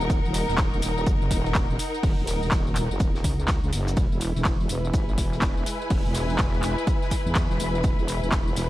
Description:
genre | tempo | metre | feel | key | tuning
bass house | 124 BPM | 4/4 | swing 60% on 16ths | unclear | A4 = 442 Hz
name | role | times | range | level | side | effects
wobble bass | bass | 0.0-8.7 s | Eb1 to E2 | -27 LUFS | equal | chorus, tube saturation, sidechain pumping
garage drum kit | drums | 0.0-8.7 s | handclaps, hi-hat, ride cymbal, tambourine | -32 LUFS | equal | none
rich studio string section | texture | 0.0-8.7 s | Eb4 to B5 | -31 LUFS | left 1 dB | sidechain pumping
electronic kick drum | drums | 0.1-8.4 s | none | -25 LUFS | equal | overdrive
warm soul drum kit | drums | 0.1-8.7 s | hi-hat, shaker, snare drum | -42 LUFS | equal | high-pass filter on hats, high-pass filter on snare, high-pass filter on perc, high-pass filter on room
sweeping resonant pad | sustained chords | 4.0-8.7 s | G#3 to B4 | -34 LUFS | left 1 dB | chorus, sidechain pumping
room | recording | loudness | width
small room reverb | dark, warm production | -22 LUFS | side -15 dB against mid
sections
0.0-8.7 A section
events
none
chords
0.0 Ebm; 4.0 E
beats
| 0.10 0.58 1.06 1.55 | 2.03 2.52 3.00 3.48 | 3.97 4.45 4.94 5.42 | 5.90 6.39 6.87 7.36 | 7.84 8.32

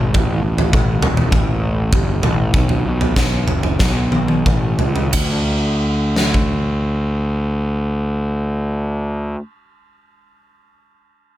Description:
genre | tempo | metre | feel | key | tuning
quiet-loud alternative rock | 87-103 BPM | 4/4 | straight | unclear | A4 = 436 Hz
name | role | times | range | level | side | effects
fuzz picked electric bass | bass | 0.0-9.4 s | E1 to D2 | -18 LUFS | equal | overdrive
big rock drum kit | drums | 0.1-6.5 s | kick drum, ride cymbal, snare drum, toms | -17 LUFS | equal | none
room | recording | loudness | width
little or no reverb | none | -15 LUFS | side -14 dB against mid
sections
0.0-5.1 A section; 5.1-7.9 B section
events
slowing down 0.1-5.1; drum fill 3.8-5.1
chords
none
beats
| 0.15 0.73 1.32 1.92 | 2.53 3.15 3.79 4.45 | 5.12 5.82 6.50 7.20

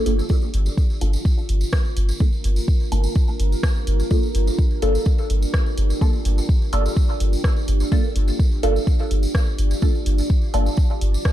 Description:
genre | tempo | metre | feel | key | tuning
dub techno | 126 BPM | 4/4 | straight | G minor | A4 = 440 Hz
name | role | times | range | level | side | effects
deep dark ambient pad | sustained chords | 0.0-11.3 s | D4 to D5 | -29 LUFS | right 1 dB | chorus, built-in reverb, sidechain pumping
filtered dub chord stab | stabs | 0.0-10.7 s | Bb3 to A4 | -27 LUFS | right 1 dB | phaser, sidechain pumping, dub echo
soft dub sub bass | bass | 0.1-11.2 s | G1 | -19 LUFS | equal | sidechain pumping
punchy analog drum machine | drums | 0.1-11.3 s | hi-hat, rim click | -31 LUFS | equal | overdrive
tambourine | percussion | 0.2-11.3 s | none | -37 LUFS | right 2 dB | none
electronic kick drum | drums | 0.3-11.3 s | none | -18 LUFS | equal | none
room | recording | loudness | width
little or no reverb | dark, warm production | -18 LUFS | side -13 dB against mid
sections
0.0-11.3 A section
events
none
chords
0.0 Gm7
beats
| 0.30 0.78 1.25 1.73 | 2.20 2.68 3.16 3.63 | 4.11 4.58 5.06 5.54 | 6.01 6.49 6.97 7.44 | 7.92 8.39 8.87 9.35 | 9.82 10.30 10.78 11.25

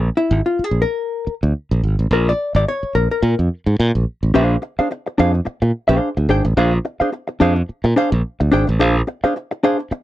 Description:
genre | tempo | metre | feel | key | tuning
funk | 108 BPM | 4/4 | swing 56% on 16ths | Bb mixolydian | A4 = 439 Hz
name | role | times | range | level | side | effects
modern bright fingered electric bass | bass | 0.0-9.9 s | Ab1 to Bb2 | -16 LUFS | equal | none
hollow-body jazz guitar | accompaniment | 0.2-10.0 s | D4 to G5 | -17 LUFS | left 1 dB | none
room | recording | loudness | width
little or no reverb | dry, close 1970s-style studio recording | -16 LUFS | side -14 dB against mid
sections
0.0-4.3 A section; 4.3-10.0 B section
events
hollow-body jazz guitar solo 0.0-4.3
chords
0.0 Bb7(no3); 4.3 Bb9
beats
0.44 1.00 1.56 | 2.12 2.67 3.23 3.79 | 4.34 4.90 5.46 6.02 | 6.57 7.13 7.69 8.25 | 8.80 9.36 9.92

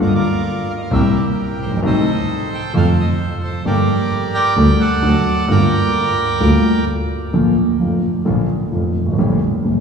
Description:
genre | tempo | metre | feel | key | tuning
tango | 131 BPM | 4/4 | rubato | G minor | A4 = 440 Hz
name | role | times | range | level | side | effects
bandoneon | melody | 0.0-6.8 s | F4 to G5 | -20 LUFS | right 3 dB | none
dark grand piano | accompaniment | 0.0-9.8 s | F1 to G4 | -16 LUFS | left 1 dB | none
clear double bass | bass | 0.0-9.8 s | F1 to F2 | -20 LUFS | right 2 dB | none
room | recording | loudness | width
wet church reverb, RT60 3.7 s | recorded in a church or concert hall, studio ambience | -14 LUFS | side -6 dB against mid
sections
0.0-7.3 A section; 7.3-9.8 B section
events
none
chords
0.0 Gm7; 0.9 C7; 1.8 Adim/C; 2.7 F; 3.7 Gm; 4.6 Dsus4; 5.0 D; 5.5 Gm7; 7.3 Bb; 9.2 Gm/Bb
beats
0.45 0.91 1.38 | 1.83 2.29 2.75 3.20 | 3.66 4.12 4.57 5.03 | 5.49 5.95 6.41 6.88 | 7.34 7.81 8.27 8.73 | 9.19 9.65

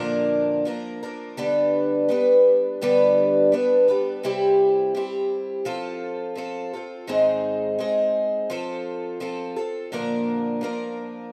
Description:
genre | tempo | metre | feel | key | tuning
rock | 84 BPM | 4/4 | straight | unclear | A4 = 442 Hz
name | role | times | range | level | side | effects
picked twelve-string acoustic guitar | solo | 0.0-11.3 s | G2 to B4 | -23 LUFS | equal | none
room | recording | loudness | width
moderate plate reverb, RT60 2.3 s | rough home demo mix | -23 LUFS | mono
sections
0.0-11.3 A section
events
none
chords
0.0 Bb; 1.4 G; 4.2 C; 5.7 F; 7.1 Ab; 8.5 F; 9.9 Bb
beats
0.66 | 1.38 2.09 2.80 3.52 | 4.23 4.94 5.65 6.36 | 7.07 7.79 8.50 9.21 | 9.92 10.63

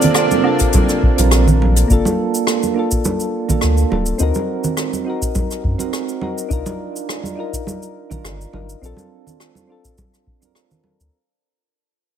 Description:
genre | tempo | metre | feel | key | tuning
sunset chillout | 104 BPM | 4/4 | swing 53% on 16ths | G minor | A4 = 441 Hz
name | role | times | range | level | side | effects
clean electric guitar | melody | 0.0-1.3 s | D5 | -28 LUFS | left 1 dB | vintage 12-bit sampler grit, tape echo, digital delay
soft electric-piano-like synth keys | accompaniment | 0.0-11.2 s | Bb3 to Bb4 | -20 LUFS | moving between left 5 dB and right 7 dB | chorus, auto-pan, vintage 12-bit sampler grit, tape echo
lush unison pad | sustained chords | 0.0-1.9 s | C3 to D4 | -21 LUFS | equal | chorus
jazz brush drum kit | drums | 0.0-11.1 s | cabasa, hi-hat, rim click, woodblock | -23 LUFS | left 1 dB | none
congas | percussion | 0.0-11.0 s | none | -23 LUFS | right 3 dB | none
electronic kick drum | drums | 0.6-10.4 s | none | -18 LUFS | equal | none
warm sub bass | bass | 1.2-11.1 s | D1 to F#2 | -17 LUFS | equal | none
room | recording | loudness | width
light reverb, studio ambience | none | -15 LUFS | side -9 dB against mid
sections
0.0-1.9 A section; 1.9-11.1 B section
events
fade-out 1.9-11.1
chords
0.0 Bbmaj9; 1.9 Gm9 (rootless); 4.2 D7b9b13 (rootless); 6.5 Cm11 (rootless); 8.8 Bbmaj9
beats
0.17 0.74 1.32 | 1.90 2.47 3.05 3.63 | 4.20 4.78 5.36 5.93 | 6.51 7.09 7.67 8.24 | 8.82 9.40 9.97 10.55

